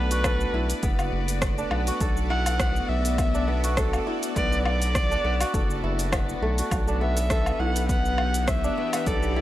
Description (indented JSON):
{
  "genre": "organic downtempo",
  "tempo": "102 BPM",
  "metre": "4/4",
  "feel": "swing 55% on 16ths",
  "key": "B minor pentatonic",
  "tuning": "A4 = 440 Hz",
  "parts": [
    { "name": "rich kamancheh", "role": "melody", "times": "0.0-9.4 s", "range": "B4 to F#5", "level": "-30 LUFS", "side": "equal", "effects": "analog delay" },
    { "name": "bowed-like drone", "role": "sustained chords", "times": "0.0-9.4 s", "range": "E3 to D5", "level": "-32 LUFS", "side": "left 1 dB", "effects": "built-in reverb, phaser, sidechain pumping" },
    { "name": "kora", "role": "arpeggios", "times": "0.0-9.4 s", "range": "A3 to A4", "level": "-30 LUFS", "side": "equal", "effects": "analog delay" },
    { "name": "round analog bass", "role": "bass", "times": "0.0-9.4 s", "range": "F#1 to B1", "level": "-26 LUFS", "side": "equal", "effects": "sidechain pumping" },
    { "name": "quartz singing bowl", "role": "texture", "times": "0.0-9.4 s", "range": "A3 to A4", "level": "-43 LUFS", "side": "right 5 dB", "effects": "none" },
    { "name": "deep house drum kit", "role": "drums", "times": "0.1-9.3 s", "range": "hi-hat, rim click, shaker, woodblock", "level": "-30 LUFS", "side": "left 1 dB", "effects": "overdrive, studio reverb" },
    { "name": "electronic kick drum", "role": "drums", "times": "0.2-9.2 s", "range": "none", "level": "-28 LUFS", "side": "equal", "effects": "overdrive, studio reverb" }
  ],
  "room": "studio ambience",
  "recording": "dry, gritty hardware recording",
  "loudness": "-22 LUFS",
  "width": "side -14 dB against mid",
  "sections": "0.0-9.4 A section",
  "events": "none",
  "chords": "0.0 Bm7; 6.7 Em7/B"
}